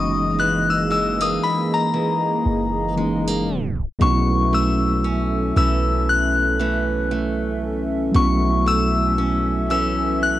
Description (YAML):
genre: R&B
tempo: 58 BPM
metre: 4/4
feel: swing 58% on 16ths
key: unclear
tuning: A4 = 440 Hz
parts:
  - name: glassy synth bell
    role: melody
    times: 0.0-10.4 s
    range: A#5 to F#6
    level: -22 LUFS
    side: left 4 dB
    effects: chorus, cassette tape, analog delay
  - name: mellow tine electric piano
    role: accompaniment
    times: 0.0-10.4 s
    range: E3 to E4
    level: -25 LUFS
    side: equal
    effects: medium stereo tremolo, cassette tape
  - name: hollow soft pad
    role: sustained chords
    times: 0.0-10.4 s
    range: E3 to E5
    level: -26 LUFS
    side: equal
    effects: chorus, cassette tape
  - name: picked acoustic archtop guitar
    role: arpeggios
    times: 0.0-10.4 s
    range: F#2 to C#4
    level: -27 LUFS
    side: right 6 dB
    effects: cassette tape
  - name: clean 808-style bass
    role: bass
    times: 0.0-10.4 s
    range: F#1 to B1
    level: -24 LUFS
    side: equal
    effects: none
room: light reverb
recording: home recording on cassette, tape stop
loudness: -18 LUFS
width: side -14 dB against mid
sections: 0.0-4.0 A section; 4.0-10.4 B section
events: tape stop 3.5-4.0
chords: 0.0 F#13; 4.0 B9sus4